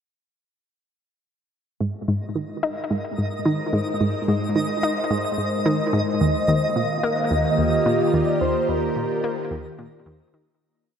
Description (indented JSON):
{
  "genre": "ambient, sequencer-driven space music",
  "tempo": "109 BPM",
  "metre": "4/4",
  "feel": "straight",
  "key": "Eb major",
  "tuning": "A4 = 440 Hz",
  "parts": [
    { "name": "evolving wavetable pad", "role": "sustained chords", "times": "1.8-10.6 s", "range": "Eb3 to C5", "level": "-25 LUFS", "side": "equal", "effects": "phaser, built-in reverb, shimmer reverb" },
    { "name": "analog pluck", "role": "riff", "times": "1.8-10.5 s", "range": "Eb2 to Eb4", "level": "-23 LUFS", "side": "equal", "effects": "chorus, shimmer reverb, tape echo" },
    { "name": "twinkling granular texture", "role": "texture", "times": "2.8-10.6 s", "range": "Eb5", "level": "-29 LUFS", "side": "equal", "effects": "built-in reverb, shimmer reverb" },
    { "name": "expressive synth lead", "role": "melody", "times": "6.2-9.8 s", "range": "Bb4 to F5", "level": "-25 LUFS", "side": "right 1 dB", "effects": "ensemble chorus, shimmer reverb, tape echo" }
  ],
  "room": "wet lush hall reverb, RT60 2.8 s",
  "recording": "dreamy mix soaked in reverb",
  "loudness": "-20 LUFS",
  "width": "side -8 dB against mid",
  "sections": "1.8-10.6 A section",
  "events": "fade-in on ambient pad 1.8-10.6; filter sweep on synth arpeggio sound 1.8-10.6; fade-out 7.7-10.6",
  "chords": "1.8 Ab; 6.2 Ebadd9",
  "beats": "| 1.80 2.35 2.90 3.46 | 4.01 4.56 5.11 5.66 | 6.21 6.76 7.31 7.86 | 8.41 8.96 9.51 10.06"
}